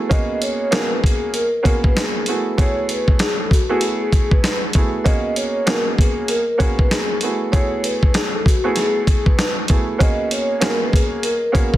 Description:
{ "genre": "hip hop, boom-bap hip-hop", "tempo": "97 BPM", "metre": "4/4", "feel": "swing 60% on 16ths", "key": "unclear", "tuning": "A4 = 440 Hz", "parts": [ { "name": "warm upright piano", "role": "accompaniment", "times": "0.0-11.8 s", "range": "A3 to G#4", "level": "-23 LUFS", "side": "right 3 dB", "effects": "cassette tape, high-pass filter, low-pass filter" }, { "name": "vibraphone with soft mallets", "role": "melody", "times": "0.1-11.8 s", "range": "F#4 to D#5", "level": "-22 LUFS", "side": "left 1 dB", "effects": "high-pass filter, low-pass filter, ping-pong delay" }, { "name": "dusty soul sampler-style drum kit", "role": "drums", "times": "0.1-11.8 s", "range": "hi-hat, kick drum, snare drum", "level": "-17 LUFS", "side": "equal", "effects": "none" }, { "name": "finger snaps", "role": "percussion", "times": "10.6-10.8 s", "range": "none", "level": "barely audible", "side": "none", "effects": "none" } ], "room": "small room ambience", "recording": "dense, heavily limited modern master", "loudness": "-16 LUFS", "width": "side -14 dB against mid", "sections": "0.1-11.8 A section", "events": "none", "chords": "0.1 G#m11; 2.3 F#m11; 5.1 G#m11; 7.2 F#m11; 10.0 G#m11" }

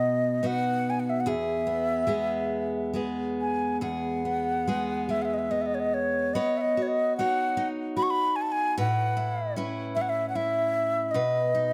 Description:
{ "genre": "celtic folk, Celtic slow air", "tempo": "68-77 BPM", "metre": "3/4", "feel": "rubato", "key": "E major", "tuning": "A4 = 440 Hz", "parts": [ { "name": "wooden flute", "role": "melody", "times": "0.0-11.7 s", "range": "C#5 to C#6", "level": "-29 LUFS", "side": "equal", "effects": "none" }, { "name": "picked steel-string acoustic guitar", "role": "accompaniment", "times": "0.0-11.7 s", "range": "E2 to C#5", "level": "-32 LUFS", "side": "equal", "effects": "none" } ], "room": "light reverb", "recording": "close, detailed microphones", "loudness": "-27 LUFS", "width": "mono", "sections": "0.0-3.8 A section; 3.8-11.7 B section", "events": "none", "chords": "0.0 B; 1.2 E; 6.4 Badd9; 8.8 Aadd9; 11.1 B" }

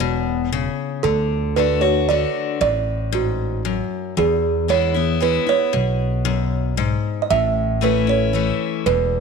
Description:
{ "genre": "country", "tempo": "115 BPM", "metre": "3/4", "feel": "straight", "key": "A major", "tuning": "A4 = 440 Hz", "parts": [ { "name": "kalimba", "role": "melody", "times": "0.0-9.2 s", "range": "F#4 to E5", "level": "-20 LUFS", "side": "right 9 dB", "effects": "none" }, { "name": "picked steel-string acoustic guitar", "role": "accompaniment", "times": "0.0-9.2 s", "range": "E2 to F#4", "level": "-22 LUFS", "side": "left 11 dB", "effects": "none" }, { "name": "upright bass", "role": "bass", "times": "0.0-9.2 s", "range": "E1 to E2", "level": "-23 LUFS", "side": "equal", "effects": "none" } ], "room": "moderate echo chamber reverb, RT60 1.5 s, studio ambience", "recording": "1960s-style stereo with parts hard left and right", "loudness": "-17 LUFS", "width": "side -5 dB against mid", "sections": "0.0-9.2 A section", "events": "none", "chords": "0.0 A (rootless); 1.0 D; 4.2 E; 7.3 A" }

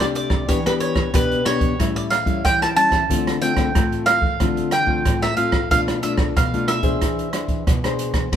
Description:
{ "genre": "samba and choro", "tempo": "92 BPM", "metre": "4/4", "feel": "straight", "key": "unclear", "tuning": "A4 = 439 Hz", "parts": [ { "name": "mandolin", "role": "melody", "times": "0.0-7.6 s", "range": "B4 to A5", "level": "-21 LUFS", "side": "right 2 dB", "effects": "none" }, { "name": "nylon-string guitar", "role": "accompaniment", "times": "0.0-8.4 s", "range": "A2 to C5", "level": "-22 LUFS", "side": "left 4 dB", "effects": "none" }, { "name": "open jazz drum kit", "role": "drums", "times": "0.0-8.4 s", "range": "hi-hat, kick drum, ride cymbal, rim click", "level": "-21 LUFS", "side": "right 1 dB", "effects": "none" } ], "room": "moderate large studio reverb, RT60 1.2 s", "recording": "band playing live in one room", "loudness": "-17 LUFS", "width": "side -9 dB against mid", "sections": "0.0-8.3 A section", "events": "none", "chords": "0.5 Em7; 1.8 A7; 3.1 Dm7; 5.7 Bm7b5; 7.0 E7b13" }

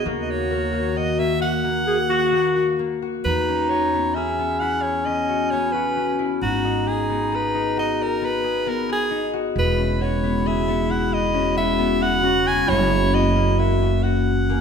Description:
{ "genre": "contemporary instrumental, chamber music in an uneven meter", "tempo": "133 BPM", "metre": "7/4", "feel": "straight", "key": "unclear", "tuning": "A4 = 440 Hz", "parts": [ { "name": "clear soprano saxophone", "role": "melody", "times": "0.0-14.6 s", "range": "F#4 to G#5", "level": "-25 LUFS", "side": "right 2 dB", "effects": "none" }, { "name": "warbly tape-like pad", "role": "sustained chords", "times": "0.0-3.2, 10.1-14.6 s", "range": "C#3 to F#4", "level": "-27 LUFS", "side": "left 2 dB", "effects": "chorus, built-in reverb" }, { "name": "concert harp", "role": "arpeggios", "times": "0.0-14.6 s", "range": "A#3 to A#4", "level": "-25 LUFS", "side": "left 6 dB", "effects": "none" }, { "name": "warm clarinet", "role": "second line", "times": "0.1-14.6 s", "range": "C#4 to G#4", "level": "-24 LUFS", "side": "equal", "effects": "none" }, { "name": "upright bass", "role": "bass", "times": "0.1-14.6 s", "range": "E1 to E2", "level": "-26 LUFS", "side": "right 3 dB", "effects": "none" } ], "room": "wet recital hall reverb, RT60 1.5 s", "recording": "none", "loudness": "-19 LUFS", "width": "side -6 dB against mid", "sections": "0.0-3.3 A section; 3.3-14.6 B section", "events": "none", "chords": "0.1 D#m; 3.3 E69; 6.4 G#m7; 9.6 E69; 12.7 F#7" }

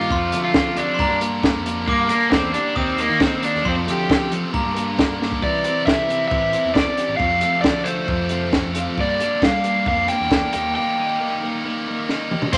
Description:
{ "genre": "indie rock", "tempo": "135 BPM", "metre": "4/4", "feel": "straight", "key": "G minor", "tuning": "A4 = 439 Hz", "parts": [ { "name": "overdriven semi-hollow guitar", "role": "melody", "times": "0.0-12.6 s", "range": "Bb3 to G5", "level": "-23 LUFS", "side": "equal", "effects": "none" }, { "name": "glockenspiel with hard plastic mallets", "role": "second line", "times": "0.0-5.2, 12.5-12.6 s", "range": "Bb5 to Eb6", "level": "-30 LUFS", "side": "equal", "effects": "none" }, { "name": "scooped high-gain guitar", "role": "riff", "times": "0.0-12.6 s", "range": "F2 to E4", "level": "-29 LUFS", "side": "equal", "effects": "distortion" }, { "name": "twelve-string electric guitar", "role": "riff", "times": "0.0-12.6 s", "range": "Eb3 to G4", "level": "-30 LUFS", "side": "equal", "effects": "none" }, { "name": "fuzz fingered electric bass", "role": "bass", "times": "0.0-12.6 s", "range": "A1 to G3", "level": "-32 LUFS", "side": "equal", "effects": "overdrive" }, { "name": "compact cocktail drum kit", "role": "drums", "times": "0.0-12.6 s", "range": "crash cymbal, hi-hat, kick drum, snare drum, toms", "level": "-23 LUFS", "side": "equal", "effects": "none" } ], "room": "moderate studio reverb, RT60 0.7 s", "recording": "none", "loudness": "-20 LUFS", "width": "mono", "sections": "0.0-5.4 A section; 5.4-12.5 B section", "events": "drum fill 5.2, 12.1-12.5; break 10.8-12.5", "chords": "0.1 Fadd9; 1.0 Gm; 2.8 Eb; 3.7 Fadd9; 4.5 Gm; 5.4 Cadd9; 7.2 F; 9.0 Gm; 10.5 Eb" }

